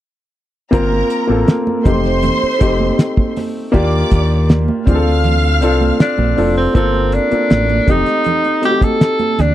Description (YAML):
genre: lush 1970s-style soul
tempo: 80 BPM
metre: 4/4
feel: straight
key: G minor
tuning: A4 = 441 Hz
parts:
  - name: warm studio string section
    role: second line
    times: 0.7-6.3 s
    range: Bb4 to F6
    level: -21 LUFS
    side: right 2 dB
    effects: none
  - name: warm baby grand piano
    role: accompaniment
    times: 0.7-9.5 s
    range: A3 to Bb4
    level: -17 LUFS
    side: left 2 dB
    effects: none
  - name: fingered electric bass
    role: bass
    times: 0.7-9.5 s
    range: F1 to Eb2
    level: -16 LUFS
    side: equal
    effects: none
  - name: cloth-damped thuddy drum kit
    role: drums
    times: 0.7-9.5 s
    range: hi-hat, kick drum, snare drum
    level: -13 LUFS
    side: equal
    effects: none
  - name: congas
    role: percussion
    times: 0.9-9.5 s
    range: none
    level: -22 LUFS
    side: right 6 dB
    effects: none
  - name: warm tenor saxophone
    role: melody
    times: 6.0-9.5 s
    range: C4 to A4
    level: -16 LUFS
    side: right 1 dB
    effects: none
room: little or no reverb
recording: dry, close 1970s-style studio recording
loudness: -12 LUFS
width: side -13 dB against mid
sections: 0.7-6.8 A section; 6.8-9.5 B section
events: none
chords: 0.7 Gm11; 1.9 F7; 3.7 Ebmaj9; 4.9 Dm7; 6.8 Gm11; 7.9 F7 (rootless)